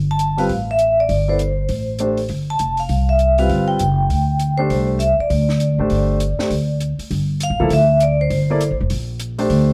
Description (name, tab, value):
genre	modal jazz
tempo	200 BPM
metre	4/4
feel	swing 62% on 8ths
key	unclear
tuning	A4 = 440 Hz
part	upright bass	bass	0.0-9.7 s	F1 to D2	-21 LUFS	equal	none
part	vibraphone with medium mallets	melody	0.1-8.8 s	C5 to A5	-22 LUFS	equal	plate reverb
part	compact cocktail drum kit	drums	0.2-9.6 s	hi-hat, snare drum	-36 LUFS	equal	none
part	warm concert grand piano	accompaniment	0.4-9.7 s	F3 to D5	-23 LUFS	equal	none
room	moderate studio reverb, RT60 0.8 s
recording	dark, warm production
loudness	-18 LUFS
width	mono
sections	0.0-7.1 A section; 7.1-9.7 B section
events	none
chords	0.0 D7sus4 (rootless); 2.3 G9sus4; 7.1 Gmadd9